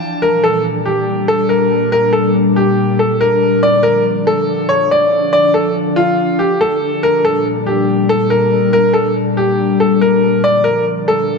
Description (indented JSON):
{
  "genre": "hip hop",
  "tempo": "141 BPM",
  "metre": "4/4",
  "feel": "half-time",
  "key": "unclear",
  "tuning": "A4 = 440 Hz",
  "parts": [
    { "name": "bright upright piano", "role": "melody", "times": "0.0-11.4 s", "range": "F4 to A5", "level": "-13 LUFS", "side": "equal", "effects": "low-pass filter, analog delay" },
    { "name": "glassy FM pad", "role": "sustained chords", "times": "0.0-11.4 s", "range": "Bb2 to D4", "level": "-16 LUFS", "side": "left 3 dB", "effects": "ensemble chorus, built-in reverb" }
  ],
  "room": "wet plate reverb, RT60 2.7 s",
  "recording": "dreamy mix soaked in reverb",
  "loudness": "-11 LUFS",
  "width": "side -4 dB against mid",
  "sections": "0.2-11.4 A section",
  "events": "none",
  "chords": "0.2 Bb6; 3.6 Dm; 7.0 Bb6; 10.4 Dm",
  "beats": "| 0.22 0.65 1.07 1.50 | 1.92 2.35 2.77 3.20 | 3.62 4.05 4.48 4.90 | 5.33 5.75 6.18 6.60 | 7.03 7.46 7.88 8.31 | 8.73 9.16 9.58 10.01 | 10.43 10.86 11.28"
}